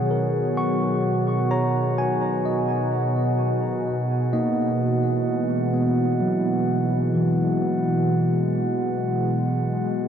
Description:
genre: ambient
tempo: 64 BPM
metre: 4/4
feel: straight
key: unclear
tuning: A4 = 440 Hz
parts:
  - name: warm analog pad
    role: sustained chords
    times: 0.0-10.1 s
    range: B2 to G#4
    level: -23 LUFS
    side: right 1 dB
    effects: chorus
  - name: bright tine electric piano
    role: arpeggios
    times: 0.0-10.1 s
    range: D#3 to C#6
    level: -25 LUFS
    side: equal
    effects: diffuse ambient delay
  - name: glass harmonica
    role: texture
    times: 0.0-10.1 s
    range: F#4 to F#5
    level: -28 LUFS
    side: equal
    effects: none
room: wet huge ambient reverb, RT60 8.2 s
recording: in a vast, echoing space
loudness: -20 LUFS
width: side -8 dB against mid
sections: 0.0-10.1 A section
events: none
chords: 0.0 B6; 3.9 C#m7/B

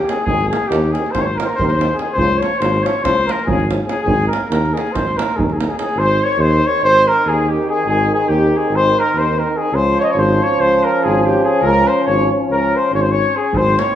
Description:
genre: balkan folk, Balkan brass band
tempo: 285 BPM (eighths)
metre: 9/8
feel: straight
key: Ab major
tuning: A4 = 440 Hz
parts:
  - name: warm flugelhorn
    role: melody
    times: 0.0-14.0 s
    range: G4 to Eb5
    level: -17 LUFS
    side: left 1 dB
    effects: none
  - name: warm trumpet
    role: second line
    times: 0.0-14.0 s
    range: G4 to Eb5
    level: -24 LUFS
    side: left 4 dB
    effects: none
  - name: clear euphonium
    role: accompaniment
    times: 0.1-14.0 s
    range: C4 to Db4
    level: -24 LUFS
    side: left 4 dB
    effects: none
  - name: clear euphonium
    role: accompaniment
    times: 0.1-14.0 s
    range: Eb3 to F3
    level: -23 LUFS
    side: right 5 dB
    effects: none
  - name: davul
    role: percussion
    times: 0.1-5.9, 13.5-13.9 s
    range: none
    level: -23 LUFS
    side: right 2 dB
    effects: none
  - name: mellow tuba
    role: bass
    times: 0.3-13.8 s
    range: Ab1 to Eb2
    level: -19 LUFS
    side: equal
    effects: none
room: wet large studio reverb, RT60 0.9 s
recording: band playing live in one room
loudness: -13 LUFS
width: side -10 dB against mid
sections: 0.0-6.0 A section; 6.0-14.0 A section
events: none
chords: 0.0 Ab; 2.2 Db; 4.1 Ab; 9.7 Db

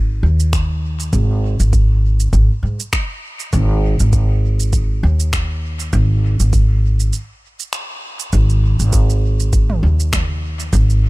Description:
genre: ambient dub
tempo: 100 BPM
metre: 4/4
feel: swing 56% on 16ths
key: unclear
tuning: A4 = 439 Hz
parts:
  - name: upright bass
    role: bass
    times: 0.0-11.1 s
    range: G#1 to G#2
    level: -14 LUFS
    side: equal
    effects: none
  - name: organic electronic drum kit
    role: drums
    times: 0.4-11.0 s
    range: finger snaps, shaker, toms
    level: -26 LUFS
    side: right 2 dB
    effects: overdrive, dub echo
  - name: electronic kick drum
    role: drums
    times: 0.5-10.9 s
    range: none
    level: -17 LUFS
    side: equal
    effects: overdrive
room: digital ambience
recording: none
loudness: -14 LUFS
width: side -21 dB against mid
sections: 0.0-8.3 A section; 8.3-11.1 B section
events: break 7.1-8.3; band accent 7.7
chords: none

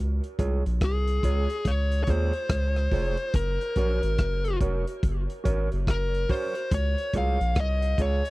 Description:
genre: roots reggae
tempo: 71 BPM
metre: 4/4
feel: swing 62% on 16ths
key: Db major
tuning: A4 = 444 Hz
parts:
  - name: soft dub sub bass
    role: bass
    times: 0.0-8.2 s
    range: F1 to Eb2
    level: -26 LUFS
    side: equal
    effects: none
  - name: crunchy breakbeat drum kit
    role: drums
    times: 0.2-8.3 s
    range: hi-hat, kick drum, rim click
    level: -26 LUFS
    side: equal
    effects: none
  - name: mellow electric guitar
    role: accompaniment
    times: 0.4-8.2 s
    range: F4 to Db5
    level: -34 LUFS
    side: right 4 dB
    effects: spring reverb, dub echo
  - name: fuzz lead guitar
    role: melody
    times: 0.8-8.3 s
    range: Ab4 to F5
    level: -30 LUFS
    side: left 2 dB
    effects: distortion, dub echo
room: little or no reverb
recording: dry, close 1970s-style studio recording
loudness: -24 LUFS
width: side -20 dB against mid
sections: 0.0-8.3 A section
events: none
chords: 0.0 Db; 3.3 Gb; 6.7 Db

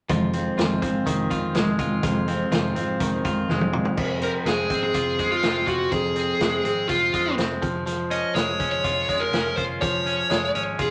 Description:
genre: jangly indie pop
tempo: 123 BPM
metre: 4/4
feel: straight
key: unclear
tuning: A4 = 441 Hz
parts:
  - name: fingerpicked steel-string acoustic guitar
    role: accompaniment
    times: 0.1-4.0 s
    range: F2 to F4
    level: -28 LUFS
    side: equal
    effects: none
  - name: direct-recorded clean electric guitar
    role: arpeggios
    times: 0.1-10.9 s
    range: F2 to F4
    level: -29 LUFS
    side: equal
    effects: none
  - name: vintage muted picked electric bass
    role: bass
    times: 0.1-10.9 s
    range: F1 to F2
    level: -37 LUFS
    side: equal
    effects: none
  - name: vintage drum kit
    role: drums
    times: 0.1-10.9 s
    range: crash cymbal, hi-hat, kick drum, snare drum, toms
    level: -30 LUFS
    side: equal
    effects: none
  - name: dark smooth lead guitar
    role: melody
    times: 4.2-10.9 s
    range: F4 to Eb5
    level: -26 LUFS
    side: equal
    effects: overdrive
room: wet club reverb, RT60 0.9 s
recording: none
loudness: -23 LUFS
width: mono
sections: 0.1-4.0 A section; 4.0-10.9 B section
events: drum fill 3.5-4.0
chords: 0.1 Fm7; 4.0 Fm; 7.6 Db/F

